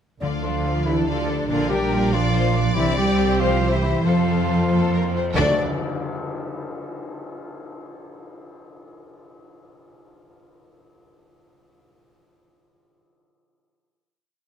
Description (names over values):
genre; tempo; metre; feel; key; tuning
cinematic, heroic adventure film score; 94 BPM (dotted quarters); 6/8; straight; D minor; A4 = 440 Hz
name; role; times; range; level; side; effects
silver concert flute; second line; 0.2-5.6 s; D5 to G5; -29 LUFS; left 2 dB; none
warm clarinet; second line; 0.2-5.5 s; D4 to D5; -31 LUFS; left 1 dB; none
warm symphonic violin section; second line; 0.2-5.6 s; G4 to F5; -33 LUFS; left 4 dB; none
clear symphonic viola section; accompaniment; 0.2-5.6 s; A3 to G4; -32 LUFS; right 2 dB; none
clear trombone section; sustained chords; 0.2-5.5 s; F3 to D4; -31 LUFS; right 5 dB; none
mellow French horn section; sustained chords; 0.2-5.6 s; D4 to G4; -30 LUFS; left 5 dB; none
concert harp; arpeggios; 0.2-5.6 s; Bb2 to F#5; -29 LUFS; left 6 dB; none
clear symphonic double bass section; bass; 0.2-5.6 s; Bb1 to F2; -24 LUFS; right 4 dB; none
warm studio cello section; bass; 0.2-5.6 s; D3 to D4; -25 LUFS; right 2 dB; none
rich studio violin section; melody; 0.9-5.6 s; A4 to D5; -29 LUFS; left 4 dB; none
cymbal swell and tam-tam; percussion; 2.8-7.0 s; none; -34 LUFS; left 2 dB; none
room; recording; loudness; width
moderate scoring stage reverb, RT60 1.9 s; none; -19 LUFS; side -8 dB against mid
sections
0.2-5.4 theme; 5.4-6.6 final chord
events
band accent 5.4-5.8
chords
0.2 Dm; 1.5 Bb; 2.8 C; 4.0 F; 5.4 D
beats
| 0.22 0.86 | 1.50 2.12 | 2.76 3.40 | 4.05 4.71 | 5.37 6.01